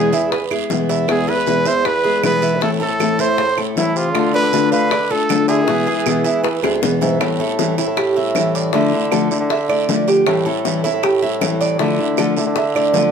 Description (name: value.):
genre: latin, Cuban son and guajira.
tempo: 157 BPM.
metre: 4/4.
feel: straight.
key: A minor from 7.2 s.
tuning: A4 = 440 Hz.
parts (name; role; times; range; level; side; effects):
warm trumpet; melody; 0.0-6.6 s; E4 to C5; -18 LUFS; right 2 dB; slapback echo.
nylon-string guitar; accompaniment; 0.0-13.1 s; B2 to F4; -20 LUFS; left 4 dB; none.
Cuban tres; arpeggios; 0.0-13.1 s; E4 to F5; -21 LUFS; right 5 dB; none.
warm bassoon; bass; 0.0-13.1 s; D2 to E3; -22 LUFS; right 1 dB; none.
guiro; percussion; 0.1-13.1 s; none; -30 LUFS; right 9 dB; none.
bongos; percussion; 0.3-13.1 s; none; -24 LUFS; left 6 dB; none.
claves; percussion; 0.5-12.9 s; none; -28 LUFS; right 10 dB; none.
room: wet studio reverb, RT60 0.6 s.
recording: none.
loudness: -14 LUFS.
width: side -7 dB against mid.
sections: 0.0-7.2 A section; 7.2-13.1 B section.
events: drum fill 6.6-7.2.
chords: 0.0 E; 2.6 Am; 4.1 Dm; 5.7 E; 7.2 Am7; 8.7 Dmadd9; 10.3 Am7; 11.8 Dmadd9.